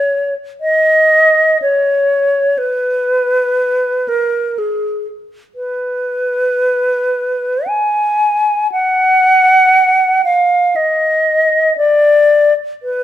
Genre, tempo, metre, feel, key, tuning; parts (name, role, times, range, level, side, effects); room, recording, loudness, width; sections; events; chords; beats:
classical, free, expressive piece for unaccompanied alto flute; 51-62 BPM; 3/4; rubato; A4 = 445 Hz
bright alto flute; solo; 0.0-13.0 s; Ab4 to Ab5; -11 LUFS; equal
moderate large studio reverb, RT60 1.4 s; minimal, uncompressed stereo recording; -11 LUFS; side -12 dB against mid
0.0-13.0 A section
0.60 1.62 | 2.60 3.58 4.56 | 5.56 6.56 7.68 | 8.74 9.76 10.77 | 11.80 12.84